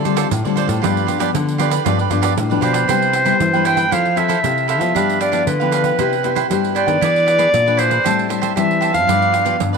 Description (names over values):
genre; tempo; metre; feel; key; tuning
samba and choro; 116 BPM; 4/4; straight; C major; A4 = 440 Hz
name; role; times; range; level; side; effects
cavaquinho; accompaniment; 0.0-9.8 s; D4 to A5; -21 LUFS; right 11 dB; none
nylon-string guitar; accompaniment; 0.0-9.8 s; G2 to A4; -22 LUFS; left 14 dB; none
nylon-string guitar; bass; 0.0-9.8 s; F#2 to G3; -22 LUFS; left 1 dB; none
pandeiro; percussion; 0.1-9.8 s; none; -26 LUFS; right 12 dB; none
clear clarinet; melody; 2.6-9.7 s; B4 to G5; -17 LUFS; equal; none
room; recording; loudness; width
moderate plate reverb, RT60 3.3 s; 1960s-style stereo with parts hard left and right; -14 LUFS; side -5 dB against mid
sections
0.0-2.9 A section; 2.9-9.8 B section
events
none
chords
0.0 Dm7; 0.8 G7; 2.9 Cmaj7; 3.9 Fmaj7; 5.0 G6; 6.0 Cmaj7; 7.0 E7; 8.1 Am7; 9.1 G7